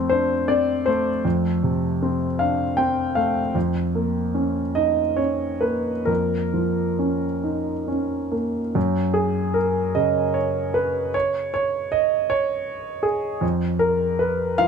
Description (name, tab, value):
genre	neoclassical minimalist piano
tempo	43-54 BPM (dotted quarters)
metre	6/8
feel	rubato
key	F# major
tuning	A4 = 440 Hz
part	warm concert grand piano	solo	0.0-14.7 s	F2 to G5	-20 LUFS	equal	none
room	little or no reverb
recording	close, detailed microphones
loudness	-20 LUFS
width	side -6 dB against mid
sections	0.0-8.8 A section; 8.8-14.7 B section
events	none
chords	0.0 F; 3.6 A#m/E#; 8.8 F#5; 13.4 N.C.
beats	0.11 | 1.25 2.40 | 3.55 4.76 | 6.09 7.44 | 8.75 9.96 | 11.14 12.30 | 13.43 14.59